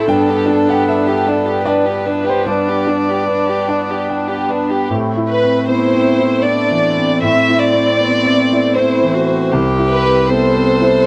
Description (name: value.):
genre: neoclassical piano and strings.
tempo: 77 BPM.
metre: 3/4.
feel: rubato.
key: A minor.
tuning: A4 = 440 Hz.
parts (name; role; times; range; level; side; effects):
warm chamber violin section; melody; 0.0-11.1 s; D4 to E5; -19 LUFS; equal; none.
clear concert grand piano; accompaniment; 0.0-11.1 s; C2 to A5; -19 LUFS; equal; none.
dark viola; accompaniment; 0.0-11.1 s; C4 to D5; -22 LUFS; equal; none.
hand-pumped harmonium; sustained chords; 0.0-11.1 s; G3 to B4; -26 LUFS; equal; none.
room: small room ambience.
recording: dry, close 1970s-style studio recording.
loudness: -15 LUFS.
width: mono.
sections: 0.0-4.9 A section; 4.9-11.1 B section.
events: none.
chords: 0.1 G; 4.9 Am; 9.5 C.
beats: | 0.09 0.87 1.66 | 2.47 3.28 4.09 | 4.89 5.67 6.45 | 7.23 8.00 8.77 | 9.54 10.30.